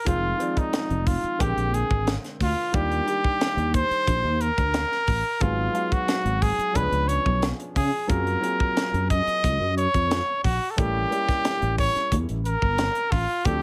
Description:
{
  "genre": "electric jazz fusion",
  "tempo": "90 BPM",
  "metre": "4/4",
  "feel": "straight",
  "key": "unclear",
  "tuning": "A4 = 442 Hz",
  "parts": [
    { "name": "clear trumpet", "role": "melody", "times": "0.0-13.6 s", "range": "Eb4 to Eb5", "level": "-27 LUFS", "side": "equal", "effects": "none" },
    { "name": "clear baby grand piano", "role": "accompaniment", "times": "0.0-13.6 s", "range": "D3 to G5", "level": "-33 LUFS", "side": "equal", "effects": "none" },
    { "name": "sustaining fretless electric bass", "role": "bass", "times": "0.1-13.6 s", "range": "F1 to Db3", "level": "-28 LUFS", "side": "equal", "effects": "ensemble chorus" },
    { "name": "tight funk drum kit", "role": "drums", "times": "0.1-13.6 s", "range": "hi-hat, kick drum, snare drum", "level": "-29 LUFS", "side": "equal", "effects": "none" }
  ],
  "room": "light reverb",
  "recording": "none",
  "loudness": "-24 LUFS",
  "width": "mono",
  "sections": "0.0-13.6 A section",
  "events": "none",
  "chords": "0.1 Fm7; 1.4 Bb13; 2.7 Ebmaj7; 5.4 Abm7; 6.8 Db7b9; 8.1 Gbmaj9#11; 10.8 A7b9",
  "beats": "| 0.06 0.73 1.40 2.07 | 2.73 3.40 4.07 4.74 | 5.41 6.08 6.75 7.42 | 8.09 8.76 9.43 10.10 | 10.78 11.45 12.12 12.79 | 13.46"
}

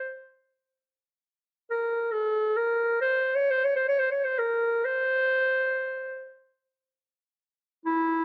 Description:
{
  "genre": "Turkish makam ensemble",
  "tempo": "free time",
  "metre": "none",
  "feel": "none",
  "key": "C makam hicaz",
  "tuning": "A4 = 440 Hz",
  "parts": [
    { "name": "warm clarinet", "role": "solo", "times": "0.0-8.2 s", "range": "E4 to Db5", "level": "-26 LUFS", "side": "equal", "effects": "slapback echo" }
  ],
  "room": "little or no reverb",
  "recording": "recorded outdoors, with no room sound, lossy compression artefacts",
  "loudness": "-26 LUFS",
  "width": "mono",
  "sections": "0.0-8.2 A section",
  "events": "none",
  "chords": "none",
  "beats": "free time"
}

